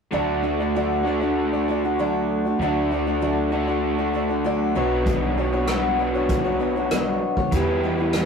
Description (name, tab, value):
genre	folk rock and heartland rock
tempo	97 BPM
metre	4/4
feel	straight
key	D major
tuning	A4 = 440 Hz
part	picked acoustic archtop guitar	accompaniment	0.1-8.3 s	B2 to D5	-24 LUFS	left 3 dB	none
part	raw garage guitar	riff	0.1-8.3 s	E2 to G4	-23 LUFS	right 2 dB	overdrive
part	upright bass	bass	0.1-8.3 s	B1 to E2	-30 LUFS	equal	none
part	vintage drum kit	drums	5.1-8.3 s	hi-hat, kick drum, rim click	-26 LUFS	equal	none
room	moderate studio reverb, RT60 0.5 s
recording	rough rehearsal-room recording, warm saturation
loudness	-20 LUFS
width	side -6 dB against mid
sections	0.1-8.3 A section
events	none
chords	0.1 D; 4.8 Bmadd9; 7.5 Em